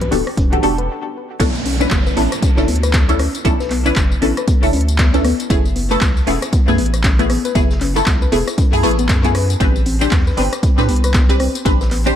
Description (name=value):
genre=deep house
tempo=117 BPM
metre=4/4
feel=swing 60% on 16ths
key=B minor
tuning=A4 = 443 Hz
part: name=soft round pluck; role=arpeggios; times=0.0-12.0 s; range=B3 to B4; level=-23 LUFS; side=left 4 dB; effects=chorus, sidechain pumping, ping-pong delay
part: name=filtered dub chord stab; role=stabs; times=0.0-12.2 s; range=A3 to C5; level=-19 LUFS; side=equal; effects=phaser, wide subtle chorus, sidechain pumping, ping-pong delay
part: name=round analog bass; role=bass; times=0.0-12.1 s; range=D1 to A2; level=-19 LUFS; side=equal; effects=tube saturation, sidechain pumping
part: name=deep house drum kit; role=drums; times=0.0-12.1 s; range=crash cymbal, handclaps, hi-hat, rim click, tambourine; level=-24 LUFS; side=left 1 dB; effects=none
part: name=congas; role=percussion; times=0.0-0.6 s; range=none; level=-27 LUFS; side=left 2 dB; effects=none
part: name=loose indie drum kit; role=drums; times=0.1-12.1 s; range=hi-hat, snare drum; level=-36 LUFS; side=equal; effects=none
part: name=electronic kick drum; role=drums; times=0.4-11.8 s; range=none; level=-16 LUFS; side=equal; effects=none
part: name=downlifter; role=sound effects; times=1.4-5.5 s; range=none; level=-28 LUFS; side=right 4 dB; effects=none
room=light reverb, digital ambience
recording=none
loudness=-13 LUFS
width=side -10 dB against mid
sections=0.0-1.4 A section; 1.4-12.2 B section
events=stop 0.9-1.4; drop 1.4-12.2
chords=0.0 Em11; 1.4 Bm11; 5.5 F#m11; 9.6 Am11